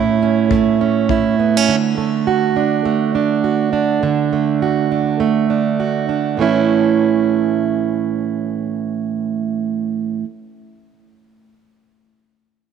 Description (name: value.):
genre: acoustic pop.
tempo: 102 BPM.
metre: 4/4.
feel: swing 60% on 16ths.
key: A major.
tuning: A4 = 441 Hz.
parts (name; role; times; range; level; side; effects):
fingerpicked plugged-in steel-string acoustic guitar; accompaniment; 0.0-10.3 s; A2 to F#4; -15 LUFS; right 7 dB; none.
kick drum; drums; 0.5-1.3 s; none; -24 LUFS; left 4 dB; none.
room: moderate plate reverb, RT60 3.1 s.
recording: 1960s-style stereo.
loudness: -15 LUFS.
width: side -6 dB against mid.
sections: 0.0-6.4 A section; 6.4-8.7 B section.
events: none.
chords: 0.0 A; 1.7 D; 6.4 A.